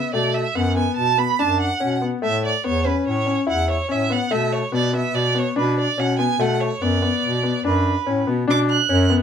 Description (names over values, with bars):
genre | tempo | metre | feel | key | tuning
contemporary instrumental, chamber music in an uneven meter | 144 BPM | 5/4 | straight | B dorian | A4 = 438 Hz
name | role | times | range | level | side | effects
rich violin | melody | 0.0-9.1 s | B4 to F#6 | -22 LUFS | right 6 dB | none
warm baby grand piano | arpeggios | 0.0-9.2 s | A3 to E4 | -22 LUFS | left 5 dB | none
clear bass clarinet | bass | 0.0-9.2 s | E2 to B2 | -23 LUFS | right 1 dB | none
room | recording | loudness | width
moderate studio reverb, RT60 0.5 s | minimal, uncompressed stereo recording | -18 LUFS | side -8 dB against mid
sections
0.0-8.5 A section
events
none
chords
0.1 Bm7; 2.2 A; 4.3 Bm11; 6.4 Bm7; 8.5 Bm